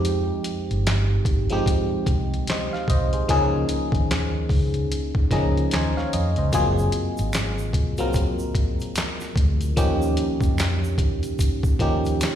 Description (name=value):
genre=R&B, neo-soul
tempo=74 BPM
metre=4/4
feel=swing 60% on 16ths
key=F minor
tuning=A4 = 439 Hz
part: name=FM electric piano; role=accompaniment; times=0.0-12.4 s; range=F3 to Bb5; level=-25 LUFS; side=equal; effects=chorus, slapback echo
part: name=vintage muted fingered electric bass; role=bass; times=0.0-12.1 s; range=Gb1 to F2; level=-24 LUFS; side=equal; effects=none
part: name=boom bap sampler-style drum kit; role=drums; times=0.0-12.4 s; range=handclaps, hi-hat, kick drum, snare drum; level=-24 LUFS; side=equal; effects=none
part: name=egg shaker and finger snaps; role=percussion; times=6.5-12.4 s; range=none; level=-38 LUFS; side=right 2 dB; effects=slapback echo
room=light reverb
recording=live gig heard through the venue's PA, recital hall reverb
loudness=-20 LUFS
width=side -10 dB against mid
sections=0.0-12.4 A section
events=FM electric piano fill 4.9-6.5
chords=0.0 Fm9; 3.3 Db69; 6.5 Gbmaj9#11; 9.8 Eb9